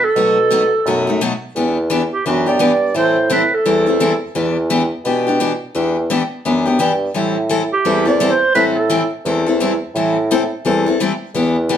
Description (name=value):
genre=acoustic string swing (jazz manouche)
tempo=172 BPM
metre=4/4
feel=swing 61% on 8ths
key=unclear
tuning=A4 = 440 Hz
part: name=warm clarinet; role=melody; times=0.0-4.2, 7.7-9.1 s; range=F#4 to D5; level=-15 LUFS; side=right 3 dB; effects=none
part: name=picked steel-string acoustic guitar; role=accompaniment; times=0.2-11.8 s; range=B2 to A4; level=-18 LUFS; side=left 3 dB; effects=none
part: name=mellow bassoon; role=bass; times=0.2-11.8 s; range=E2 to B2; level=-19 LUFS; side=right 1 dB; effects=none
room=moderate studio reverb, RT60 0.8 s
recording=heard from further back in the room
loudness=-14 LUFS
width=side -9 dB against mid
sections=0.0-1.6 A section; 1.6-11.8 A section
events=none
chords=0.2 B7; 1.6 Em9; 3.0 Am7; 4.4 Em7; 7.2 Am7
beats=| 0.15 0.51 0.85 1.21 | 1.55 1.91 2.25 2.60 | 2.96 3.31 3.65 4.00 | 4.36 4.71 5.05 5.41 | 5.75 6.11 6.45 6.80 | 7.15 7.50 7.85 8.20 | 8.55 8.90 9.25 9.60 | 9.95 10.30 10.65 11.00 | 11.35 11.70